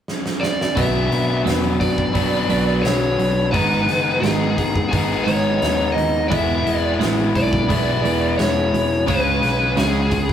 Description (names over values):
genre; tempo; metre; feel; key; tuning
quiet-loud alternative rock; 87 BPM; 4/4; straight; unclear; A4 = 440 Hz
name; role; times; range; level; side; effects
huge arena drum kit; drums; 0.1-10.3 s; hi-hat, kick drum, snare drum; -24 LUFS; right 1 dB; none
biting lead guitar; melody; 0.4-10.3 s; G#4 to E5; -21 LUFS; equal; overdrive
twelve-string electric guitar; arpeggios; 0.8-10.3 s; G#2 to C#4; -24 LUFS; right 5 dB; none
biting overdriven guitar; riff; 0.8-10.3 s; G#2 to E#4; -21 LUFS; left 4 dB; none
overdriven picked electric bass; bass; 0.8-10.3 s; E1 to F#2; -26 LUFS; right 1 dB; none
room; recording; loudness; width
light reverb; rough rehearsal-room recording; -16 LUFS; side -9 dB against mid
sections
0.8-10.3 A section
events
drum fill 0.1-0.8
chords
0.0 N.C.; 0.8 Bm; 3.5 G#m; 6.3 E; 9.1 C#